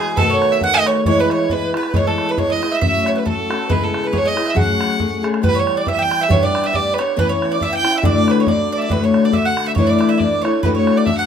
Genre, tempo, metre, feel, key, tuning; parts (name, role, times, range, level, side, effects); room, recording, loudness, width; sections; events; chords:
celtic folk, Celtic polka; 138 BPM; 2/4; swing 55% on 8ths; F# dorian; A4 = 441 Hz
clear fiddle; melody; 0.0-11.3 s; G#4 to G5; -19 LUFS; right 4 dB
bowl-back mandolin; second line; 0.0-11.3 s; G#4 to G5; -25 LUFS; right 5 dB
mellow hollow baroque flute; second line; 0.0-11.3 s; G#4 to G5; -27 LUFS; left 1 dB
picked old ladder-braced acoustic guitar; accompaniment; 0.0-11.3 s; D2 to G#4; -19 LUFS; left 4 dB
bodhran; percussion; 0.2-11.2 s; -22 LUFS; right 1 dB
moderate studio reverb, RT60 0.5 s; minimal, uncompressed stereo recording; -14 LUFS; side -8 dB against mid
0.0-5.4 A section; 5.4-11.3 B section
0.2 B7; 1.1 E; 2.8 F#m; 3.7 C#m7; 4.6 F#madd9; 5.4 Em; 6.3 G; 7.2 Aadd9; 8.0 D; 9.8 Asus4/E; 10.6 D